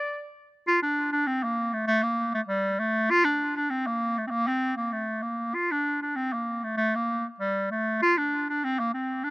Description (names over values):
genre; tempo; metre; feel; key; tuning
balkan folk; 98 BPM; 2/4; straight; D minor; A4 = 438 Hz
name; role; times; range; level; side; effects
bright clarinet; solo; 0.0-9.3 s; G3 to D5; -24 LUFS; equal; none
room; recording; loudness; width
little or no reverb; recorded outdoors, with no room sound; -24 LUFS; side -22 dB against mid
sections
0.6-9.3 A section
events
none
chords
none